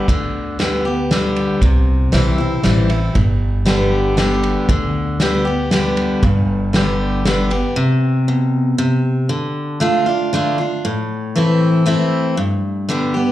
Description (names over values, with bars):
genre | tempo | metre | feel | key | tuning
honky-tonk and classic country | 117 BPM | 3/4 | straight | unclear | A4 = 440 Hz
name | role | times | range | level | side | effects
picked steel-string acoustic guitar | accompaniment | 0.0-13.3 s | G2 to G4 | -16 LUFS | equal | plate reverb, slapback echo
upright bass | bass | 0.1-7.6 s | G1 to D2 | -19 LUFS | equal | none
unplugged drum kit | drums | 0.1-7.6 s | kick drum, ride cymbal, snare drum | -21 LUFS | equal | none
room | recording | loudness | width
light reverb | live gig heard through the venue's PA, club reverb | -14 LUFS | side -14 dB against mid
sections
0.0-7.8 A section; 7.8-13.3 B section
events
none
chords
0.0 G; 1.6 C; 3.2 G; 7.8 N.C.; 9.3 Dm; 10.8 Am; 12.4 G